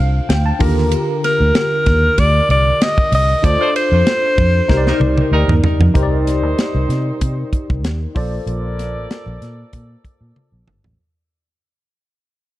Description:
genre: polished 1980s jazz-funk pop.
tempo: 95 BPM.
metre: 4/4.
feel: swing 54% on 16ths.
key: C dorian.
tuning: A4 = 443 Hz.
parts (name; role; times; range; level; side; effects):
tine electric piano; accompaniment; 0.0-11.0 s; D3 to Bb5; -21 LUFS; left 1 dB; medium stereo tremolo, analog chorus.
vintage muted fingered electric bass; bass; 0.0-10.9 s; G1 to C3; -16 LUFS; equal; none.
tight funk drum kit; drums; 0.3-11.0 s; hi-hat, kick drum, ride cymbal, snare drum, toms; -19 LUFS; equal; none.
warm alto saxophone; melody; 1.2-5.6 s; Bb4 to Eb5; -16 LUFS; equal; none.
dark horn section; second line; 3.6-10.6 s; G3 to D5; -26 LUFS; equal; digital delay.
room: little or no reverb.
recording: dark, warm production.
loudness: -13 LUFS.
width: side -15 dB against mid.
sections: 0.0-6.0 A section; 6.0-11.0 B section.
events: tine electric piano fill 0.0-0.9; band accent 3.4-6.0; drum fill 4.7-6.0, 10.4-11.0; fade-out 6.0-11.0.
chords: 0.0 Bbmaj7 (rootless); 0.6 Ebmaj9; 3.4 Dm7; 4.7 Cm7; 8.2 Bbmaj7.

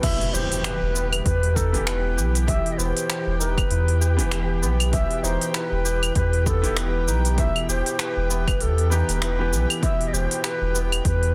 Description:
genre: organic downtempo.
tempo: 98 BPM.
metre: 4/4.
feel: swing 58% on 16ths.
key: E harmonic minor.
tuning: A4 = 441 Hz.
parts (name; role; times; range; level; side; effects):
mellow reedy Native American-style cedar flute; melody; 0.0-11.3 s; A4 to E5; -30 LUFS; equal; delay.
felt-muted upright piano; accompaniment; 0.0-11.3 s; B2 to G4; -35 LUFS; equal; sidechain pumping, tape echo.
airy breathy pad; sustained chords; 0.0-11.3 s; E3 to G5; -37 LUFS; equal; chorus, vintage 12-bit sampler grit, sidechain pumping.
santur; arpeggios; 0.0-11.3 s; B3 to B4; -34 LUFS; equal; vintage 12-bit sampler grit, tape echo.
electronic kick drum; drums; 0.0-11.2 s; none; -28 LUFS; equal; overdrive.
organic electronic drum kit; drums; 0.0-11.3 s; claves, crash cymbal, finger snaps, hi-hat, shaker; -30 LUFS; equal; overdrive, soft clipping on snare.
impact; sound effects; 0.0-2.5 s; none; -35 LUFS; equal; none.
warm sub bass; bass; 0.3-11.3 s; E1 to E2; -25 LUFS; equal; sidechain pumping.
room: light reverb.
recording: dense, heavily limited modern master.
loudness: -22 LUFS.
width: mono.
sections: 0.0-11.3 A section.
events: impact 0.0-2.5.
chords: 0.0 Emadd11.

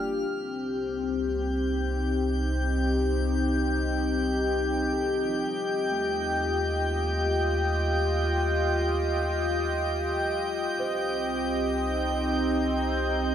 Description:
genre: ambient.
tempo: free time.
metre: none.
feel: none.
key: C dorian.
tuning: A4 = 441 Hz.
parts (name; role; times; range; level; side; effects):
warm analog pad; sustained chords; 0.0-13.3 s; Bb3 to G5; -26 LUFS; left 1 dB; chorus.
round analog bass; bass; 0.0-13.3 s; G1 to Eb2; -30 LUFS; equal; none.
drifting glass-harmonics texture; texture; 0.0-13.3 s; F6 to G6; -34 LUFS; left 1 dB; chorus, built-in reverb.
felt-muted upright piano; arpeggios; 3.2-13.3 s; F3 to C5; -43 LUFS; right 3 dB; none.
room: wet plate reverb, RT60 3.1 s.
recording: echo-heavy mix, cassette tape.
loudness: -24 LUFS.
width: side -9 dB against mid.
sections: 0.3-13.3 A section.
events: fade-out on analog synth bass 0.3-13.3.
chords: 0.3 Cm; 5.5 Ebadd9; 10.7 Cm.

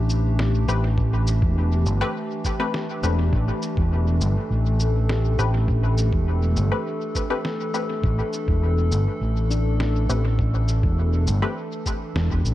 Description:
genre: ambient dub.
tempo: 102 BPM.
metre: 4/4.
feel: straight.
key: unclear.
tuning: A4 = 439 Hz.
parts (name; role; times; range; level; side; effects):
warbly tape-like pad; sustained chords; 0.0-12.5 s; E3 to A4; -28 LUFS; equal; chorus, built-in reverb.
overdriven fingered electric bass; bass; 0.0-12.5 s; E1 to A1; -20 LUFS; equal; none.
electronic shaker and snare drum; drums; 0.1-12.5 s; none; -33 LUFS; equal; dub echo.
filtered dub chord stab; stabs; 0.7-11.5 s; A3 to B4; -30 LUFS; left 3 dB; chorus, dub echo.
electronic kick drum; drums; 1.0-12.4 s; none; -25 LUFS; equal; none.
handpan; arpeggios; 3.0-12.3 s; D4 to A4; -36 LUFS; left 4 dB; analog delay.
room: digital ambience.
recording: echo-heavy mix.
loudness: -20 LUFS.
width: side -14 dB against mid.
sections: 0.0-12.5 A section.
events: band accent 12.2.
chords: 0.0 Am9.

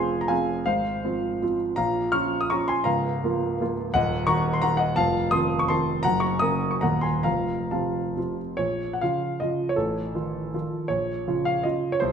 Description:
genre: classical, romantic triple-time dance for piano with dotted rhythms.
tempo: 122-192 BPM.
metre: 3/4.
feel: rubato.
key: Bb minor from 3.9 s.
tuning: A4 = 440 Hz.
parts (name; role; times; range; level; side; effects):
clear concert grand piano; solo; 0.0-12.1 s; Db1 to F6; -22 LUFS; equal; none.
room: wet recital hall reverb, RT60 1.7 s.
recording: minimal, uncompressed stereo recording.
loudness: -22 LUFS.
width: side -7 dB against mid.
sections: 0.0-8.6 A section; 8.6-12.1 B section.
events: none.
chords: 0.0 Fm; 0.7 Fm/Ab; 1.8 Bbm; 2.9 Bbm/Db; 3.9 Ebm; 5.0 F7; 6.0 Gb; 6.8 Ebm; 7.2 F; 8.6 Bbm; 9.8 F7/A; 10.9 Bbm.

